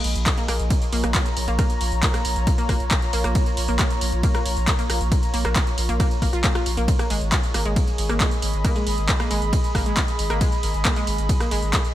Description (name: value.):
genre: driving peak-time techno.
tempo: 136 BPM.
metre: 4/4.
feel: straight.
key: Bb phrygian.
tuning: A4 = 441 Hz.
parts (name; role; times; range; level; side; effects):
saturated sub bass; bass; 0.0-11.7 s; Ab1 to Bb1; -25 LUFS; equal; overdrive, sidechain pumping, low-pass filter.
punchy analog drum machine; drums; 0.0-11.9 s; handclaps, hi-hat, ride cymbal, rim click; -26 LUFS; equal; none.
airy breathy pad; texture; 0.0-11.9 s; F4 to Cb6; -30 LUFS; equal; chorus, sidechain pumping.
electronic kick drum; drums; 0.3-11.8 s; none; -22 LUFS; equal; none.
analog pluck; riff; 0.4-11.6 s; Ab3 to F4; -29 LUFS; equal; chorus, tube saturation, cassette tape, sidechain pumping, digital delay.
room: light reverb, digital ambience.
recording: bright 1980s-style digital production.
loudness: -19 LUFS.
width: side -13 dB against mid.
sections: 0.0-11.9 A section.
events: none.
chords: 0.0 Bbm; 6.9 Abm.